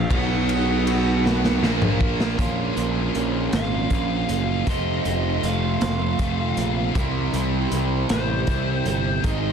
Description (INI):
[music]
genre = quiet-loud alternative rock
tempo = 52 BPM (dotted quarters)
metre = 6/8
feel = straight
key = Bb minor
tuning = A4 = 440 Hz
[part]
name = biting lead guitar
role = melody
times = 0.0-9.5 s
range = C5 to F#5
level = -29 LUFS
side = right 1 dB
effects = overdrive
[part]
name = biting overdriven guitar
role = riff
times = 0.0-9.5 s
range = F2 to F4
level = -27 LUFS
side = right 13 dB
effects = none
[part]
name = heavy high-gain guitar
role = riff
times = 0.0-2.4 s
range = Bb2 to B3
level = -28 LUFS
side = equal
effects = distortion
[part]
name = high-gain distorted guitar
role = riff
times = 0.0-9.5 s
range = F2 to F4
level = -30 LUFS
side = left 14 dB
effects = distortion
[part]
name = fuzz picked electric bass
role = bass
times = 0.0-9.5 s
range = F1 to C2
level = -25 LUFS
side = left 1 dB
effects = overdrive
[part]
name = raw garage drum kit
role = drums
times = 0.1-9.4 s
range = hi-hat, kick drum, ride cymbal, snare drum, toms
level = -26 LUFS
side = equal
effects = none
[part]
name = electric guitar through a small old amp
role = arpeggios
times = 2.4-9.5 s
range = E3 to Ab4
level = -32 LUFS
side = left 1 dB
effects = phaser
[sound]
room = small room ambience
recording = dense, heavily limited modern master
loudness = -20 LUFS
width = side -7 dB against mid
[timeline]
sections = 0.0-2.4 A section; 2.4-9.5 B section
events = drum fill 1.2-2.4; lead electric guitar solo 2.4-9.5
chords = 0.1 B5; 1.6 Bb5; 2.4 Bbm; 4.7 F; 7.0 C